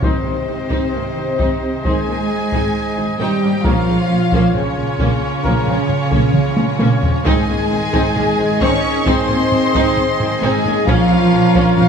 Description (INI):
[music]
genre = cinematic, epic orchestral film score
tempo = 66 BPM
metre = 4/4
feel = straight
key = Ab major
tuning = A4 = 444 Hz
[part]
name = warm symphonic violin section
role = melody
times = 0.0-11.9 s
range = C5 to Db6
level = -24 LUFS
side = left 3 dB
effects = none
[part]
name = warm symphonic violin section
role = second line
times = 0.0-11.9 s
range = C4 to Db5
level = -24 LUFS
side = left 4 dB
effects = none
[part]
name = warm symphonic viola section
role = accompaniment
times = 0.0-11.9 s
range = Ab3 to Eb4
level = -23 LUFS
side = right 1 dB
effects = none
[part]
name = clear trombone section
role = sustained chords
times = 0.0-11.9 s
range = C3 to Db4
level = -22 LUFS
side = right 2 dB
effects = none
[part]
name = mellow French horn section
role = sustained chords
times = 0.0-11.9 s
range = Eb3 to Eb4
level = -27 LUFS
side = left 4 dB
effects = none
[part]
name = warm woodwind section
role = sustained chords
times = 0.0-11.9 s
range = Ab3 to Eb5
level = -25 LUFS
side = left 2 dB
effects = none
[part]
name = mellow trumpet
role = stabs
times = 0.0-11.9 s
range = Ab4 to C5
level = -27 LUFS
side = right 1 dB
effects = none
[part]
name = rich symphonic cello section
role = bass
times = 0.0-11.9 s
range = C3 to Db4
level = -21 LUFS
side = right 2 dB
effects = none
[part]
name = warm symphonic double bass section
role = bass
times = 0.0-11.9 s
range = Ab1 to Bb1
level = -23 LUFS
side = right 3 dB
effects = none
[part]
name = solo taiko drums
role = drums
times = 0.0-11.9 s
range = none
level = -21 LUFS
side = left 1 dB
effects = none
[part]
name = timpani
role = percussion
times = 0.0-1.4 s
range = Ab2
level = -30 LUFS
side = left 2 dB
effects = none
[sound]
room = moderate scoring stage reverb, RT60 1.7 s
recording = none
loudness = -14 LUFS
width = side -6 dB against mid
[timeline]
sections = 0.0-11.9 A section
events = drum fill 6.3-7.3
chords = 0.0 Ab; 3.6 Bbm; 7.3 Ab; 10.9 Bbm